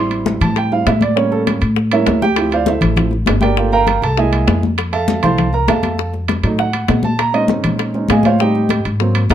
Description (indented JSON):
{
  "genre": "Afro-Cuban jazz",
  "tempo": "199 BPM",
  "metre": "4/4",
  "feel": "straight",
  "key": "unclear",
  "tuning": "A4 = 440 Hz",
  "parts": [
    { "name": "warm grand piano", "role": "accompaniment", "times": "0.0-9.3 s", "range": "F3 to C6", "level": "-17 LUFS", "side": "right 4 dB", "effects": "none" },
    { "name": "upright bass", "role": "bass", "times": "0.0-9.3 s", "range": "G1 to Bb2", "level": "-18 LUFS", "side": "left 1 dB", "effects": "none" },
    { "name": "congas", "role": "percussion", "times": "0.1-9.3 s", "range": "none", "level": "-20 LUFS", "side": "left 3 dB", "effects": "none" },
    { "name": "timbales", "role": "percussion", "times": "0.1-9.3 s", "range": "none", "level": "-23 LUFS", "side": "right 6 dB", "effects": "none" },
    { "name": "bongos", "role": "percussion", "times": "0.3-9.3 s", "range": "none", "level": "-25 LUFS", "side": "left 12 dB", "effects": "none" }
  ],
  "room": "light reverb",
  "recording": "dark, warm production",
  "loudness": "-13 LUFS",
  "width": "side -10 dB against mid",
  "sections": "0.0-4.8 A section; 4.8-9.3 A section",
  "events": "grand piano solo 0.0-9.3",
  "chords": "0.0 Am7; 1.2 A7b9; 2.4 Dm9; 3.6 Gm7; 4.2 C7alt; 4.8 Fmaj7; 6.0 F7b9; 7.2 Bbm11; 8.4 Am7b5"
}